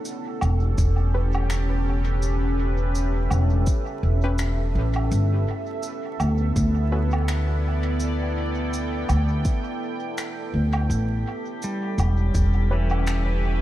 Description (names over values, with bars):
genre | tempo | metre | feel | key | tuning
ambient dub | 83 BPM | 4/4 | swing 57% on 16ths | A mixolydian | A4 = 442 Hz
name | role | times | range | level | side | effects
deep dark ambient pad | sustained chords | 0.0-13.6 s | B3 to G5 | -29 LUFS | right 1 dB | chorus, built-in reverb
shaker, woodblock and finger snaps | drums | 0.1-13.2 s | none | -34 LUFS | equal | dub echo
upright bass | bass | 0.4-13.6 s | E1 to D2 | -21 LUFS | equal | tube saturation
electronic kick drum | drums | 0.8-12.5 s | none | -24 LUFS | equal | none
filtered dub chord stab | stabs | 1.1-7.1, 12.7-12.9 s | C#4 to B4 | -37 LUFS | left 1 dB | chorus, dub echo
drifting glass-harmonics texture | texture | 11.0-13.6 s | G4 to G5 | -37 LUFS | left 9 dB | chorus, built-in reverb
pedal steel guitar | arpeggios | 11.6-13.6 s | E3 to G3 | -29 LUFS | equal | tape echo
room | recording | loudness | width
little or no reverb | vinyl crackle | -21 LUFS | side -14 dB against mid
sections
0.0-13.6 A section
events
none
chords
0.0 A9; 5.1 Gadd9; 10.9 A9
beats
0.06 0.78 1.50 | 2.23 2.95 3.67 4.39 | 5.12 5.84 6.56 7.29 | 8.01 8.73 9.46 10.18 | 10.90 11.62 12.35 13.07